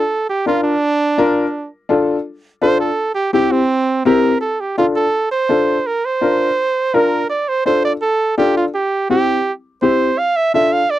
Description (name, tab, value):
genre	latin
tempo	167 BPM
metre	4/4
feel	straight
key	D minor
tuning	A4 = 440 Hz
part	clear flugelhorn	melody	0.0-11.0 s	C4 to F5	-16 LUFS	right 3 dB	none
part	warm upright piano	accompaniment	0.5-10.8 s	C4 to Bb4	-16 LUFS	left 4 dB	none
room	light reverb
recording	dry, close 1970s-style studio recording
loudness	-14 LUFS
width	side -14 dB against mid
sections	0.0-4.4 A section; 4.4-11.0 B section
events	flugelhorn solo 0.0-4.4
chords	0.1 Bb; 1.5 Dm; 3.0 C; 4.4 Dm; 5.9 Bb; 7.3 Dm; 8.7 C; 10.2 Dm